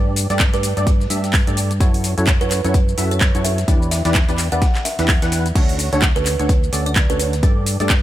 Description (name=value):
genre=piano house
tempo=128 BPM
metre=4/4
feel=swing 58% on 16ths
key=unclear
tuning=A4 = 439 Hz
part: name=percussive organ stab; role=riff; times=0.0-7.9 s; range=G2 to F#5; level=-23 LUFS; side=equal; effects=ensemble chorus, cassette tape, sidechain pumping
part: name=fingered electric bass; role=bass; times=0.0-8.0 s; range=D2 to G2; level=-21 LUFS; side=equal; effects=sidechain pumping
part: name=dusty soul sampler-style drum kit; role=drums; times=0.2-8.0 s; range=hi-hat, snare drum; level=-33 LUFS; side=left 1 dB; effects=overdrive, high-pass filter on snare, small room ambience, sidechain pumping on hats, high-pass filter on hats, high-pass filter on room
part: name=house drum kit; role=drums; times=0.2-8.0 s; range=crash cymbal, handclaps, hi-hat, shaker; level=-22 LUFS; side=equal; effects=small room ambience
part: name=electronic kick drum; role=drums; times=0.4-8.0 s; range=none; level=-16 LUFS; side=equal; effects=small room ambience
part: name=kalimba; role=melody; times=0.5-7.3 s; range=B4 to F#5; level=-27 LUFS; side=right 4 dB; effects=dub echo
room=little or no reverb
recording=none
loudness=-15 LUFS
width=side -13 dB against mid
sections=0.0-8.0 A section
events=none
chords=0.0 Gsus2; 1.8 F#m7; 3.7 Em7; 5.6 Dmaj7; 7.4 Gsus2